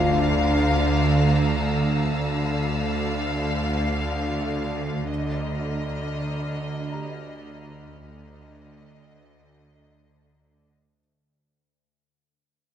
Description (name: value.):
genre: cinematic, suspense film score.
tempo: free time.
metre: none.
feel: none.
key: unclear.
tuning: A4 = 440 Hz.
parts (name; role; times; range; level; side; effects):
warm studio violin section; melody; 0.0-10.7 s; Eb5 to F5; -31 LUFS; left 3 dB; none.
rich studio cello section; bass; 0.0-10.7 s; D3; -28 LUFS; right 2 dB; none.
warm studio double bass section; bass; 0.0-10.7 s; D2; -30 LUFS; right 4 dB; none.
bowed-like drone; drone; 0.0-10.9 s; D2; -27 LUFS; left 1 dB; built-in reverb.
impact; sound effects; 0.0-2.2 s; none; -41 LUFS; right 1 dB; none.
felt-muted upright piano; texture; 0.0-11.0 s; F4 to Bb5; -31 LUFS; left 4 dB; none.
rich studio violin section; texture; 0.0-10.6 s; A5 to F6; -36 LUFS; left 2 dB; none.
room: moderate concert hall reverb, RT60 2.0 s.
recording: none.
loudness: -22 LUFS.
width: side -9 dB against mid.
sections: 0.0-11.0 A section.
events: fade-out 0.0-11.0; impact 0.0-2.2.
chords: 0.0 Dm.